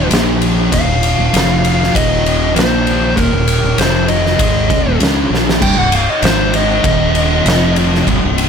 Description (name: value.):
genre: stoner and doom metal.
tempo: 98 BPM.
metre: 4/4.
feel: straight.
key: unclear.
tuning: A4 = 440 Hz.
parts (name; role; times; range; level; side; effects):
fuzz lead guitar; melody; 0.0-7.7 s; Bb4 to G5; -18 LUFS; left 1 dB; distortion, ping-pong delay.
thick fuzz guitar; riff; 0.0-8.5 s; C2 to Db4; -16 LUFS; right 1 dB; distortion.
modern bright fingered electric bass; bass; 0.0-8.5 s; C1 to Db2; -19 LUFS; equal; overdrive.
oversized low-tuned drum kit; drums; 0.1-8.5 s; crash cymbal, kick drum, ride cymbal, snare drum; -15 LUFS; equal; none.
room: little or no reverb.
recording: none.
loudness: -11 LUFS.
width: side -7 dB against mid.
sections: 0.0-5.6 A section; 5.6-8.5 B section.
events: drum fill 5.3-5.6; lead electric guitar solo 5.6-8.5.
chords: 0.1 Bb5; 0.7 Eb5; 1.3 F5; 1.9 Eb5; 2.6 Bb5; 3.2 Eb5; 3.8 F5; 4.4 Eb5; 5.6 C5; 6.2 Ab5; 6.8 Eb5; 7.5 F5.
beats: 0.10 | 0.72 1.33 1.94 2.56 | 3.17 3.78 4.39 5.01 | 5.62 6.23 6.84 7.46 | 8.07.